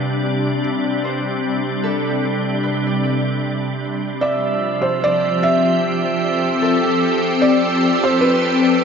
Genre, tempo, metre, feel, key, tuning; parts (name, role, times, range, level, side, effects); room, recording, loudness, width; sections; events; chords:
ambient; 75 BPM; 4/4; straight; C major; A4 = 441 Hz
felt-muted upright piano; melody; 0.0-8.8 s; G4 to E5; -21 LUFS; right 2 dB; ping-pong delay
soft additive organ-like pad; sustained chords; 0.0-8.8 s; C3 to A4; -18 LUFS; left 1 dB; ensemble chorus, built-in reverb
concert harp; arpeggios; 0.0-8.8 s; A4 to G5; -29 LUFS; right 2 dB; ping-pong delay
glass harmonica; texture; 4.2-8.8 s; E6; -25 LUFS; right 4 dB
wet lush hall reverb, RT60 2.6 s; nothing above 7.9 kHz; -16 LUFS; side -6 dB against mid
0.0-8.8 A section
fade-in on harp 0.0-8.8
0.0 Csus2; 4.2 Fmaj9